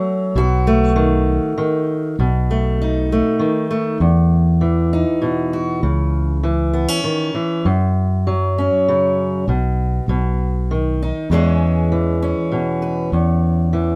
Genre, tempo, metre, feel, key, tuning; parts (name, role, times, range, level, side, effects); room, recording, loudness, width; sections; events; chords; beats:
acoustic folk-pop ballad; 99 BPM; 3/4; straight; E major; A4 = 445 Hz
fingerpicked steel-string acoustic guitar; accompaniment; 0.0-14.0 s; E2 to B4; -21 LUFS; equal
fingered electric bass; bass; 0.4-14.0 s; B1 to F#2; -19 LUFS; equal
light reverb; faint mains hum; -18 LUFS; mono
0.0-2.2 A section; 2.2-4.0 B section; 4.0-14.0 C section
0.4 B7; 4.0 Esus2; 5.8 C#m; 7.7 F#5; 9.5 N.C.; 10.1 B; 11.3 E6; 13.1 C#m/E
| 0.35 0.96 1.57 | 2.18 2.79 3.40 | 4.00 4.61 5.22 | 5.83 6.44 7.05 | 7.66 8.27 8.87 | 9.48 10.09 10.70 | 11.31 11.91 12.52 | 13.13 13.74